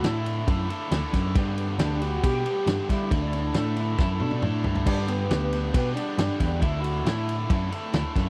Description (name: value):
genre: indie rock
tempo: 137 BPM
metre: 4/4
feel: straight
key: G major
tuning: A4 = 443 Hz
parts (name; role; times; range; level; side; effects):
- electric guitar through a small old amp; melody; 0.0-7.7 s; B3 to G4; -33 LUFS; equal; ensemble chorus, slapback echo
- raw garage guitar; riff; 0.0-8.3 s; G2 to A4; -34 LUFS; equal; overdrive
- bell-like tine electric piano; bass; 0.0-8.3 s; D2 to G3; -30 LUFS; equal; none
- loose indie drum kit; drums; 0.0-8.3 s; crash cymbal, kick drum, ride cymbal, snare drum, toms; -30 LUFS; equal; none
room: little or no reverb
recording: dry, close 1970s-style studio recording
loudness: -26 LUFS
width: mono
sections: 0.0-8.3 A section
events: drum fill 4.0-4.9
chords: 0.0 Dsus2; 1.4 G; 3.1 Dsus2; 4.9 G; 6.6 Dsus2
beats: 0.04 0.48 0.92 | 1.35 1.79 2.23 2.67 | 3.11 3.55 3.98 4.42 | 4.86 5.30 5.74 6.18 | 6.62 7.05 7.49 7.93